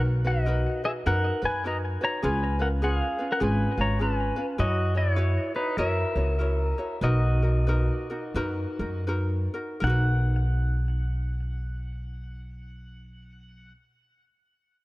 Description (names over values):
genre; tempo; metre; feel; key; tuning
Hawaiian; 77-102 BPM; 4/4; swing 62% on 8ths; B major; A4 = 440 Hz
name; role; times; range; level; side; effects
ukulele; accompaniment; 0.0-13.8 s; C#4 to C#5; -32 LUFS; equal; none
upright bass; bass; 0.0-13.7 s; G#1 to F#2; -26 LUFS; equal; none
pedal steel guitar; melody; 0.3-13.7 s; D#4 to A#5; -29 LUFS; left 1 dB; digital delay
room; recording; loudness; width
light reverb, small room ambience; dark, warm production; -24 LUFS; side -19 dB against mid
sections
0.0-9.8 A section; 9.8-13.0 B section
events
slowing down 4.6-9.8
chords
0.0 Bmaj7; 2.2 C#7; 4.6 F#7sus4; 5.8 F#7; 7.0 Bmaj7